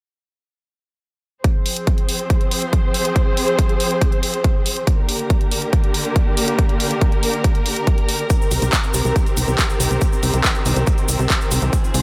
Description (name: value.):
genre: uplifting trance.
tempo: 140 BPM.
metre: 4/4.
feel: straight.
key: C minor.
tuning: A4 = 440 Hz.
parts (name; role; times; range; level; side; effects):
warm symphonic string section; sustained chords; 1.4-12.0 s; D3 to C5; -25 LUFS; equal; sidechain pumping, low-pass filter.
big-room dance drum kit; drums; 1.4-12.0 s; handclaps, hi-hat; -25 LUFS; equal; sidechain pumping on hats, studio ambience.
electronic kick drum; drums; 1.4-11.8 s; none; -20 LUFS; equal; studio ambience.
tube shaker; percussion; 8.3-12.0 s; none; -31 LUFS; equal; none.
tight sequencer bass; bass; 8.5-12.0 s; C2; -21 LUFS; equal; sidechain pumping.
riser; sound effects; 12.0 s; none; barely audible; none; none.
room: little or no reverb.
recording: none.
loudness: -18 LUFS.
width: mono.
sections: 1.4-12.0 A section.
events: none.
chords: 1.4 Fm; 4.9 Gm; 8.3 Cm7.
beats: | 1.44 1.87 2.30 2.73 | 3.16 3.59 4.01 4.44 | 4.87 5.30 5.73 6.16 | 6.59 7.01 7.44 7.87 | 8.30 8.73 9.16 9.59 | 10.02 10.44 10.87 11.30 | 11.73.